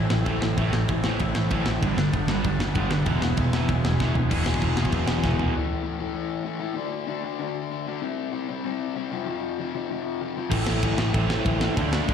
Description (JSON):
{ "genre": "punk rock", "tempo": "193 BPM", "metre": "4/4", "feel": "straight", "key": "A minor", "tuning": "A4 = 440 Hz", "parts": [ { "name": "raw garage guitar", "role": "riff", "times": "0.0-12.1 s", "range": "E2 to D4", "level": "-29 LUFS", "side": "left 9 dB", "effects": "overdrive, slapback echo" }, { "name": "raw garage guitar", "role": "riff", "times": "0.0-5.5, 10.5-12.1 s", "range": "G2 to G#4", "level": "-30 LUFS", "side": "equal", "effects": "overdrive, slapback echo" }, { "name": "sludgy distorted guitar", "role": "riff", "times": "0.0-5.5, 10.5-12.1 s", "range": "E2 to D4", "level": "-28 LUFS", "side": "right 9 dB", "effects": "overdrive" }, { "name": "picked electric bass", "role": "bass", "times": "0.0-5.5, 10.5-12.1 s", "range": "E1 to D2", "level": "-26 LUFS", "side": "equal", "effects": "none" }, { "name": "tight metal drum kit", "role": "drums", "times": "0.1-5.5, 10.5-12.1 s", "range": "crash cymbal, kick drum, ride cymbal, snare drum, toms", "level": "-28 LUFS", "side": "equal", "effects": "none" } ], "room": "small room ambience", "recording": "live gig heard through the venue's PA, recital hall reverb", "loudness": "-23 LUFS", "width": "side -8 dB against mid", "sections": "0.0-4.3 A section; 4.3-5.5 B section; 5.5-12.1 C section", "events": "drum fill 4.0-4.3, 5.2-5.5", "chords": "0.0 Am; 1.8 G; 3.1 E; 5.5 A5; 6.8 D5; 8.0 C5; 9.1 F5; 10.5 Am" }